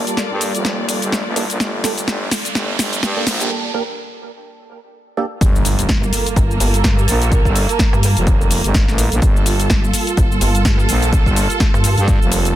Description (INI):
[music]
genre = bass house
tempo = 126 BPM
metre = 4/4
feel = swing 58% on 16ths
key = G minor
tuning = A4 = 441 Hz
[part]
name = sweeping resonant pad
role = sustained chords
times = 0.0-12.6 s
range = G3 to A4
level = -26 LUFS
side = right 2 dB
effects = chorus, sidechain pumping
[part]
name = growling FM bass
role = bass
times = 0.0-12.6 s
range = F1 to G2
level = -19 LUFS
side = equal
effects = tube saturation, sidechain pumping, high-pass filter
[part]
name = riser and impact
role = sound effects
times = 0.1-7.3 s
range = none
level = -25 LUFS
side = right 1 dB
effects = none
[part]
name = warm studio string section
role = texture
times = 0.0-12.6 s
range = Bb3 to D5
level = -24 LUFS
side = right 3 dB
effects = sidechain pumping
[part]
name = house drum kit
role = drums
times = 0.1-12.5 s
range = hi-hat, shaker, snare drum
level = -21 LUFS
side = left 1 dB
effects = small room ambience
[part]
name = percussive organ stab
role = stabs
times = 1.4-5.2 s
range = Bb3 to Bb4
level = -25 LUFS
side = right 4 dB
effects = ensemble chorus, sidechain pumping, tape echo
[part]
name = electronic kick drum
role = drums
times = 5.4-12.2 s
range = none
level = -16 LUFS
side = equal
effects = small room ambience
[part]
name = pulsing pluck wobble bass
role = bass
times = 5.9-12.0 s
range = G1 to G2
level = -17 LUFS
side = equal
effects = chorus, overdrive, sidechain pumping
[sound]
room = digital ambience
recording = dense, heavily limited modern master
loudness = -14 LUFS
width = side -13 dB against mid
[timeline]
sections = 0.0-5.4 A section; 5.4-12.6 B section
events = build-up 0.0-5.4; drum fill 0.0-3.5; filter sweep on synth stab 0.0-5.4; riser 0.1-3.5; break 3.5-5.4; drop 5.4-12.6; impact 5.4-7.3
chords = 0.0 Gmadd9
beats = 0.17 0.65 1.13 | 1.60 2.08 2.55 3.03 | 3.51 3.98 4.46 4.93 | 5.41 5.89 6.36 6.84 | 7.32 7.79 8.27 8.74 | 9.22 9.70 10.17 10.65 | 11.13 11.60 12.08 12.55